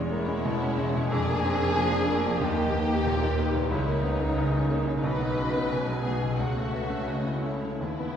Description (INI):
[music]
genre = classical, romantic movement for piano and orchestra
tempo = 79-93 BPM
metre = 4/4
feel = rubato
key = unclear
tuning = A4 = 441 Hz
[part]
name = bright baby grand piano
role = melody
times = 0.0-8.2 s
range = B1 to E4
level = -28 LUFS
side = equal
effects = none
[part]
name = warm symphonic violin section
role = melody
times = 0.0-8.2 s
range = A#4 to G#5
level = -38 LUFS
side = left 4 dB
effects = none
[part]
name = warm symphonic viola section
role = accompaniment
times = 0.0-8.2 s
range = G3 to D#4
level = -33 LUFS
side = equal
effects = none
[part]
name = warm symphonic cello section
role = bass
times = 0.0-8.2 s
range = D#2 to D#3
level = -36 LUFS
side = right 2 dB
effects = none
[part]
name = warm symphonic double bass section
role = bass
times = 0.0-8.2 s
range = E1 to D#2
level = -33 LUFS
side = right 1 dB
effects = none
[part]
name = dark symphonic violin section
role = second line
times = 0.1-8.2 s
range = D#4 to B4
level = -31 LUFS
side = left 2 dB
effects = none
[part]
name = timpani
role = percussion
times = 2.4-3.3 s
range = D#3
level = -42 LUFS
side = left 2 dB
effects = none
[sound]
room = wet concert hall reverb, RT60 2.1 s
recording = heard from further back in the room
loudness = -24 LUFS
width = side -8 dB against mid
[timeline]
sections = 0.0-8.2 A section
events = none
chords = 0.0 E6; 1.1 A#7/E#; 2.4 D#; 3.7 D#7/C#; 5.0 G#m/B; 6.4 A/C#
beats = 0.45 1.11 1.76 | 2.41 3.06 3.71 4.36 | 5.02 5.70 6.38 7.07 | 7.80